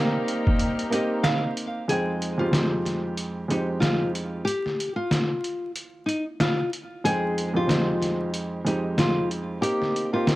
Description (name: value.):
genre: hip hop, boom-bap hip-hop.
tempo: 93 BPM.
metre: 4/4.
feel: swing 58% on 16ths.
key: F minor.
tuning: A4 = 440 Hz.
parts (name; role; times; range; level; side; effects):
nylon-string guitar; melody; 0.0-10.4 s; Eb4 to F5; -27 LUFS; left 1 dB; high-pass filter, low-pass filter, digital delay.
dark upright piano; accompaniment; 0.0-10.4 s; F2 to G5; -26 LUFS; right 2 dB; cassette tape, high-pass filter, low-pass filter.
dark studio string section; sustained chords; 0.0-1.9 s; Bb3 to C5; -34 LUFS; left 1 dB; high-pass filter, low-pass filter.
warm horn section; stabs; 0.0-1.5 s; G3 to Bb4; -32 LUFS; left 4 dB; high-pass filter, low-pass filter, digital delay.
trip hop sampler-style drum kit; drums; 0.3-10.4 s; hi-hat, kick drum, snare drum; -26 LUFS; equal; overdrive, vintage 12-bit sampler grit.
finger snap; percussion; 1.2-1.4 s; none; -38 LUFS; right 2 dB; none.
room: studio reverb.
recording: vinyl crackle.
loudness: -23 LUFS.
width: side -17 dB against mid.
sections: 0.0-1.9 A section; 1.9-10.4 B section.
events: break 0.6-1.9; kick muted 1.9-10.4.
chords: 0.0 Cm7; 1.9 Fm7; 4.5 N.C.; 7.0 Fm7; 9.6 Cm7.